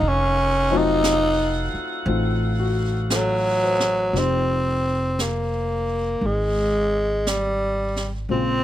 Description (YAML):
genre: jazz ballad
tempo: 58 BPM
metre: 4/4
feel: swing 68% on 8ths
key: F minor from 4.2 s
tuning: A4 = 440 Hz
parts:
  - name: growling tenor saxophone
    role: melody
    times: 0.0-8.6 s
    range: F3 to Eb4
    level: -21 LUFS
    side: equal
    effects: none
  - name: warm baby grand piano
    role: accompaniment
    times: 0.0-8.6 s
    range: Db3 to C5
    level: -27 LUFS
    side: left 7 dB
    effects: none
  - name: mellow saxophone section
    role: sustained chords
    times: 0.0-4.1 s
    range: Eb4 to Gb5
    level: -32 LUFS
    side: right 1 dB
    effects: none
  - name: upright bass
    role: bass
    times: 0.0-8.6 s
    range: F1 to Bb1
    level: -25 LUFS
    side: equal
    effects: none
  - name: jazz brush drum kit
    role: drums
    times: 0.0-8.6 s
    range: brushed snare drum, hi-hat, snare drum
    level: -31 LUFS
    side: right 2 dB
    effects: none
room: light reverb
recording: none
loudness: -19 LUFS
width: side -12 dB against mid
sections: 0.0-4.2 A section; 4.2-8.6 B section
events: tenor saxophone solo 0.0-4.2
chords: 0.0 F7b9; 4.2 Fm9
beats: | 0.02 1.04 2.08 3.12 | 4.15 5.19 6.22 7.26 | 8.29